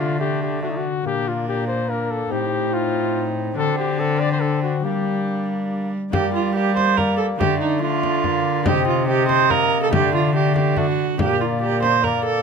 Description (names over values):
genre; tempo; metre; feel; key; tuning
classical, renaissance-style consort dance; 142 BPM; 3/4; straight; G minor; A4 = 440 Hz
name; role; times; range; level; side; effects
warm cornet; melody; 0.0-12.4 s; Eb4 to Eb5; -26 LUFS; left 7 dB; none
warm viola; second line; 0.0-12.4 s; D4 to C5; -22 LUFS; right 8 dB; none
concert harp; accompaniment; 0.0-12.4 s; A2 to G4; -26 LUFS; left 6 dB; none
mellow bassoon; accompaniment; 0.0-12.4 s; A3 to C4; -27 LUFS; left 2 dB; none
rich cello; bass; 0.0-12.4 s; A2 to G3; -24 LUFS; right 2 dB; none
frame drum; percussion; 6.1-12.2 s; none; -26 LUFS; left 3 dB; none
room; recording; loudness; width
light reverb; close, detailed microphones; -18 LUFS; side -5 dB against mid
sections
0.0-6.1 A section; 6.1-12.4 A section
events
none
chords
0.0 Dsus4; 0.6 D; 1.0 Bb; 2.3 Adim; 3.6 D7; 4.8 Gm; 7.4 Dm; 8.7 Cm; 9.9 Dsus4; 10.8 D; 11.2 Bb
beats
0.20 0.62 | 1.05 1.47 1.89 | 2.31 2.73 3.15 | 3.58 4.00 4.42 | 4.85 5.28 5.71 | 6.13 6.56 6.98 | 7.40 7.82 8.24 | 8.66 9.08 9.50 | 9.93 10.35 10.77 | 11.20 11.62 12.04